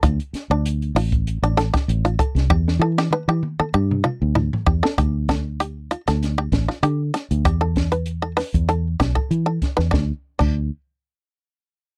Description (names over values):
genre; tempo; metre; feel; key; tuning
afrobeat; 97 BPM; 4/4; swing 53% on 16ths; D dorian; A4 = 442 Hz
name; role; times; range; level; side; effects
bluegrass banjo; arpeggios; 0.0-10.6 s; D4 to B4; -25 LUFS; equal; none
fingered electric bass; bass; 0.0-10.7 s; A1 to E3; -23 LUFS; equal; none
compact cocktail drum kit; drums; 0.0-10.5 s; crash cymbal, hi-hat, kick drum, snare drum, toms; -25 LUFS; equal; none
room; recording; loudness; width
little or no reverb; dry, close 1970s-style studio recording; -21 LUFS; mono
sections
0.0-5.0 A section; 5.0-9.9 B section; 9.9-12.0 C section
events
drum fill 2.5-5.0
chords
0.0 Dm; 2.5 Em; 5.0 D5; 7.5 E5; 9.9 N.C.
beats
| 0.04 0.65 1.27 1.89 | 2.50 3.12 3.74 4.36 | 4.98 5.60 6.21 6.83 | 7.45 8.07 8.69 9.31 | 9.93 10.55